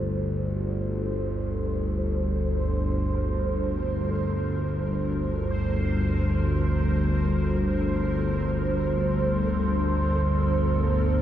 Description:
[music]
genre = dark ambient drone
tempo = free time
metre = none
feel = none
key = G minor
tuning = A4 = 440 Hz
[part]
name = granular cloud pad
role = sustained chords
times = 0.0-11.2 s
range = G3 to Bb4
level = -39 LUFS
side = right 1 dB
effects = built-in reverb
[part]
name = overtone-sweeping drone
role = drone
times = 0.0-11.2 s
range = G1 to D2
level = -24 LUFS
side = equal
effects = chorus, built-in reverb
[part]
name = bubbling stepped-filter texture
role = texture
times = 0.0-11.2 s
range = C5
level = -32 LUFS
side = right 3 dB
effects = chorus, built-in reverb
[sound]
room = moderate huge ambient reverb, RT60 8.2 s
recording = dark, warm production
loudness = -23 LUFS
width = side -11 dB against mid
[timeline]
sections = 0.0-11.2 A section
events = fade-in on ambient pad 0.0-11.2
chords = 0.0 Gmadd9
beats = free time

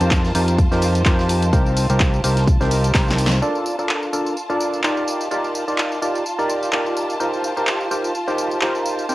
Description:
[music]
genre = piano house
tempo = 127 BPM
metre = 4/4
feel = swing 55% on 16ths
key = Bb major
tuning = A4 = 440 Hz
[part]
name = warm symphonic violin section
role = sustained chords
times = 0.0-9.1 s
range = F4 to A5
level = -27 LUFS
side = equal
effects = sidechain pumping, cassette tape
[part]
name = percussive organ stab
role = riff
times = 0.0-9.1 s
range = C4 to D5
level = -21 LUFS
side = equal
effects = analog chorus, sidechain pumping, cassette tape, analog delay
[part]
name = fingered electric bass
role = bass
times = 0.0-3.4 s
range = C2 to F2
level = -19 LUFS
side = equal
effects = sidechain pumping
[part]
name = house drum kit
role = drums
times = 0.0-9.1 s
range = handclaps, hi-hat, snare drum, tambourine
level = -24 LUFS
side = equal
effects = cassette tape
[part]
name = electronic kick drum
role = drums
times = 0.1-3.1 s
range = none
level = -18 LUFS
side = equal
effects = cassette tape
[part]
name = tight metal drum kit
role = drums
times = 0.1-3.3 s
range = hi-hat, snare drum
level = -37 LUFS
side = left 1 dB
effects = none
[sound]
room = moderate studio reverb, RT60 0.6 s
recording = home recording on cassette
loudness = -17 LUFS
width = side -17 dB against mid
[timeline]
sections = 0.0-3.4 A section; 3.4-9.1 B section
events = drum fill 2.9-3.4; band accent 3.3; filter sweep on synth stab 3.4-9.1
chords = 0.0 F9sus4; 1.5 Cm7; 3.4 Bbmaj7; 5.1 Ebmaj9; 7.2 F9sus4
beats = 0.11 0.59 1.06 | 1.53 2.00 2.48 2.95 | 3.42 3.89 4.37 4.84 | 5.31 5.78 6.25 6.73 | 7.20 7.67 8.14 8.62 | 9.09

